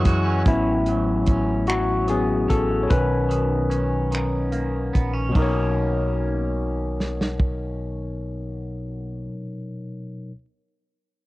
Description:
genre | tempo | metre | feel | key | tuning
slow six-eight R&B | 49 BPM (dotted quarters) | 6/8 | straight | B major | A4 = 439 Hz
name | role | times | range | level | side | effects
electric guitar at the edge of break-up | second line | 0.0-9.3 s | A2 to F#4 | -30 LUFS | right 2 dB | phaser
barky tine electric piano | accompaniment | 0.0-10.3 s | B2 to C#5 | -24 LUFS | left 2 dB | none
deep dub fingered electric bass | bass | 0.0-9.3 s | A1 to F#2 | -26 LUFS | equal | none
warm soul drum kit | drums | 0.1-7.6 s | finger snaps, hi-hat, kick drum, ride cymbal, snare drum | -22 LUFS | equal | vintage 12-bit sampler grit
room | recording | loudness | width
light reverb, small room ambience | home recording on cassette | -20 LUFS | side -18 dB against mid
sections
0.5-5.4 A section; 5.4-7.8 B section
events
tine electric piano solo 0.5-5.4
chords
0.5 A69; 2.9 Bmaj9

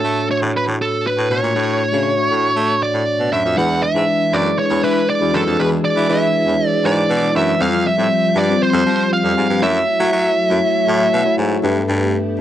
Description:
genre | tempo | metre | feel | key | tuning
pop | 119 BPM | 4/4 | straight | unclear | A4 = 440 Hz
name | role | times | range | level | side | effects
fuzz lead guitar | melody | 0.0-11.3 s | A4 to F#5 | -18 LUFS | right 2 dB | distortion
tine electric piano | accompaniment | 0.0-12.4 s | G2 to A5 | -20 LUFS | left 3 dB | wide subtle chorus
raspy baritone saxophone | bass | 0.0-12.2 s | E2 to A3 | -21 LUFS | equal | none
ensemble organ-string | sustained chords | 3.6-12.4 s | E3 to A4 | -24 LUFS | equal | ensemble chorus
room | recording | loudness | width
moderate small room ambience, RT60 0.5 s | cassette tape | -14 LUFS | side -11 dB against mid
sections
0.0-3.6 A section; 3.6-11.6 B section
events
tine electric piano fill 10.6-11.6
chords
0.0 Dmaj7/A; 3.6 E7; 7.6 Fsus2; 9.6 F#m7; 11.6 Gadd9

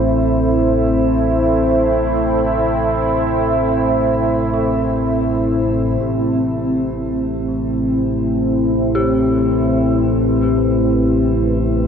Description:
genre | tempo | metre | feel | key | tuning
dark ambient drone | free time | none | none | A minor | A4 = 442 Hz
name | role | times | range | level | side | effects
deep dark ambient pad | sustained chords | 0.0-11.9 s | A3 to C5 | -15 LUFS | equal | chorus, built-in reverb, shimmer reverb
dark detuned synth bell | arpeggios | 0.0-11.9 s | D4 to G4 | -27 LUFS | left 3 dB | chorus, diffuse ambient delay, shimmer reverb
deep rumbling drone | drone | 0.0-11.9 s | A1 to A2 | -22 LUFS | equal | built-in reverb
quartz singing bowl | texture | 0.0-11.9 s | G4 to B5 | -38 LUFS | right 3 dB | none
room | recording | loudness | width
wet huge ambient reverb, RT60 7.0 s | none | -14 LUFS | side -7 dB against mid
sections
0.0-6.0 A section; 6.0-11.9 B section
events
none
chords
0.0 Amadd9

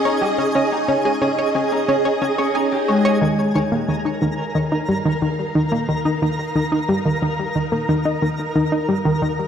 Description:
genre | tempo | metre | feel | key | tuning
ambient, sequencer-driven space music | 90 BPM | 4/4 | straight | unclear | A4 = 440 Hz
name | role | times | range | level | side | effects
phased string machine | sustained chords | 0.0-9.5 s | Db4 to F5 | -24 LUFS | right 1 dB | ensemble chorus, phaser
Celtic harp | arpeggios | 0.0-5.3 s | Ab3 to Ab5 | -23 LUFS | left 1 dB | auto-pan, ping-pong delay
twinkling granular texture | texture | 0.0-9.5 s | Ab4 to Bb5 | -27 LUFS | equal | built-in reverb
analog pluck | riff | 0.1-9.4 s | Eb3 to Ab5 | -20 LUFS | equal | chorus, ping-pong delay
room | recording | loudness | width
wet concert hall reverb, RT60 2.0 s | dark, warm production | -17 LUFS | side -8 dB against mid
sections
0.0-3.2 A section; 3.2-9.5 B section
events
filter sweep on synth arpeggio sound 0.0-3.2; fade-in on string machine 3.2-9.5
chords
0.0 Db5; 3.2 Eb

